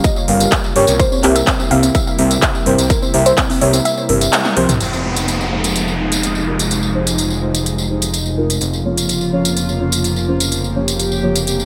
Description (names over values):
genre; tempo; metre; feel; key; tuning
progressive house; 126 BPM; 4/4; straight; F minor; A4 = 440 Hz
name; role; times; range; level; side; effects
airy breathy pad; sustained chords; 0.0-11.7 s; C3 to G4; -24 LUFS; equal; chorus, sidechain pumping
soft round pluck; arpeggios; 0.0-4.7 s; C4 to F5; -22 LUFS; equal; chorus, sidechain pumping, delay
big-room dance drum kit; drums; 0.0-11.6 s; handclaps, hi-hat, toms; -21 LUFS; equal; overdrive, studio reverb
electronic kick drum; drums; 0.0-3.5 s; none; -20 LUFS; equal; overdrive, studio reverb
tambourine; percussion; 0.0-11.7 s; none; -25 LUFS; equal; none
deep mellow chord stab; stabs; 0.3-11.3 s; C3 to F5; -22 LUFS; equal; chorus, sidechain pumping, delay
fat analog bass; bass; 0.3-11.7 s; F1 to G2; -23 LUFS; equal; tube saturation, sidechain pumping
downlifter; sound effects; 4.8-8.6 s; none; -26 LUFS; equal; none
room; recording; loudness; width
moderate lush hall reverb, RT60 1.8 s; none; -16 LUFS; mono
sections
0.0-4.8 A section; 4.8-11.7 B section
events
filter sweep on analog synth pad 0.0-4.8; kick drops out 3.9-4.8; drum fill 4.3-4.8; band accent 4.3; filter sweep on synth stab 4.8-11.7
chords
0.0 Gm7b5; 1.0 C7; 4.8 Fm7; 8.6 Bbm/F